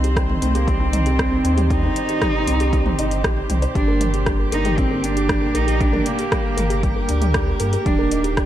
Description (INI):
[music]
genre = piano and strings electronica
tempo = 117 BPM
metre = 4/4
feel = straight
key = G minor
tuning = A4 = 440 Hz
[part]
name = muted string quartet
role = sustained chords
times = 0.0-8.5 s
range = D3 to C5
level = -28 LUFS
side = right 3 dB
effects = sidechain pumping
[part]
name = felt-muted upright piano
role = riff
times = 0.0-8.5 s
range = G3 to C5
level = -25 LUFS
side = left 1 dB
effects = digital delay
[part]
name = warm sub bass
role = bass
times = 0.0-8.5 s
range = Eb1 to G2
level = -22 LUFS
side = equal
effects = sidechain pumping
[part]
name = deep house drum kit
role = drums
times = 0.0-8.5 s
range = hi-hat, rim click, toms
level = -26 LUFS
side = right 1 dB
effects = overdrive
[part]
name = electronic kick drum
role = drums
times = 0.2-8.5 s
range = none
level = -24 LUFS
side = equal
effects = overdrive
[part]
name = dark cello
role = melody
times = 0.4-8.3 s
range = A3 to Eb4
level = -23 LUFS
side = right 2 dB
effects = none
[sound]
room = light reverb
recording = dark, warm production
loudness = -17 LUFS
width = side -12 dB against mid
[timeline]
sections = 0.0-8.5 A section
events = none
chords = 0.0 Cm; 3.8 Gm; 7.9 Eb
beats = 0.17 0.68 1.19 | 1.70 2.22 2.73 3.24 | 3.75 4.27 4.78 5.29 | 5.81 6.32 6.83 7.34 | 7.86 8.37